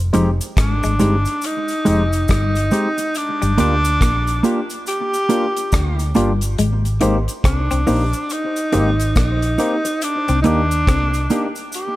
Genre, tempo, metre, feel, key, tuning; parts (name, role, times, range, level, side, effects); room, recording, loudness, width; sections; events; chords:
lovers rock reggae; 70 BPM; 4/4; swing 62% on 16ths; A4 = 442 Hz
vintage muted fingered electric bass; bass; 0.0-11.3 s; F1 to Eb2; -19 LUFS; equal
barky tine electric piano; accompaniment; 0.1-11.5 s; Ab3 to G4; -25 LUFS; left 2 dB; overdrive
semi-hollow electric guitar; riff; 0.1-11.1 s; F3 to Eb4; -24 LUFS; left 4 dB; harmonic tremolo
mellow electric guitar; stabs; 0.1-11.5 s; Ab3 to C5; -23 LUFS; right 3 dB; spring reverb, tape echo
damped 70s drum kit; drums; 0.1-12.0 s; hi-hat, kick drum, rim click; -21 LUFS; equal; gated reverb
cabasa; percussion; 0.1-12.0 s; -34 LUFS; right 2 dB
breathy tenor saxophone; melody; 0.6-12.0 s; D4 to G4; -21 LUFS; equal; tape echo
small room ambience; faint mains hum; -15 LUFS; side -16 dB against mid
0.0-12.0 A section
0.0 Fm9; 3.1 Gm7; 6.6 Abmaj7; 10.0 Cm7